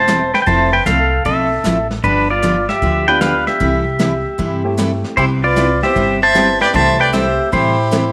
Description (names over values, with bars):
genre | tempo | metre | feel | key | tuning
country, western swing | 153 BPM | 4/4 | swing 66% on 8ths | C major | A4 = 443 Hz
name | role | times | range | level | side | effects
pedal steel guitar | melody | 0.0-8.1 s | D4 to A5 | -17 LUFS | equal | none
upright bass | bass | 0.0-8.1 s | E1 to A2 | -23 LUFS | equal | none
picked steel-string acoustic guitar | accompaniment | 0.1-8.0 s | C3 to A4 | -23 LUFS | equal | none
vintage brush drum kit | drums | 0.1-8.1 s | brushed snare drum, hi-hat, kick drum, snare drum | -26 LUFS | equal | none
clear upright piano | accompaniment | 3.1-7.8 s | A3 to A4 | -26 LUFS | equal | none
clear fiddle | second line | 5.2-8.1 s | G4 to E5 | -23 LUFS | equal | none
room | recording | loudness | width
moderate echo chamber reverb, RT60 1.7 s, studio reverb | none | -15 LUFS | mono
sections
0.0-8.1 A section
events
none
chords
0.5 Fmaj7; 2.0 G7; 3.6 C6; 5.2 Cmaj7; 6.7 Am7/C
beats
0.07 | 0.47 0.86 1.25 1.64 | 2.04 2.43 2.82 3.21 | 3.60 4.00 4.39 4.78 | 5.17 5.56 5.96 6.35 | 6.74 7.13 7.52 7.92